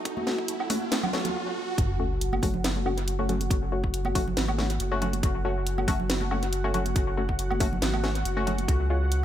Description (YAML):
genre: deep dubstep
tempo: 139 BPM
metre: 4/4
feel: swing 54% on 16ths, half-time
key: F# minor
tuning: A4 = 441 Hz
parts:
  - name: dark analog pad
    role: sustained chords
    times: 0.0-9.2 s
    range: F#4 to F#5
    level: -34 LUFS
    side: left 1 dB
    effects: chorus
  - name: saturated sub bass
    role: bass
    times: 0.0-9.2 s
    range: F#1 to C#2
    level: -28 LUFS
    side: equal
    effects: high-pass filter
  - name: riser and sub drop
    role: sound effects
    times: 0.0-3.5 s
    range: none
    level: -35 LUFS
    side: right 2 dB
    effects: none
  - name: wind-like tuned noise texture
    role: texture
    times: 0.0-1.3 s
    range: A4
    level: -46 LUFS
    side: right 7 dB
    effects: none
  - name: electronic kick drum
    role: drums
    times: 0.1-8.8 s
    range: none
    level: -27 LUFS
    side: equal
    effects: high-pass filter on kick
  - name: garage drum kit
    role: drums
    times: 0.1-9.2 s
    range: hi-hat, snare drum, woodblock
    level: -32 LUFS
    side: right 1 dB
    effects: dub echo
  - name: congas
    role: percussion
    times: 0.2-8.7 s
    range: none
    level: -35 LUFS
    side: right 4 dB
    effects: dub echo
  - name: filtered dub chord stab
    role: stabs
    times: 0.3-9.0 s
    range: G#3 to F#4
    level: -32 LUFS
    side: left 3 dB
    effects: chorus, vintage 12-bit sampler grit, dub echo
room: light reverb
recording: echo-heavy mix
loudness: -24 LUFS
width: side -11 dB against mid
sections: 0.0-1.8 A section; 1.8-9.2 B section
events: build-up 0.0-1.8; riser 0.0-1.8; filter sweep on analog synth pad 0.0-1.8; break 1.3-1.8; drop 1.8-9.2; impact 1.8-3.5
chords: 0.0 F#m; 8.7 C#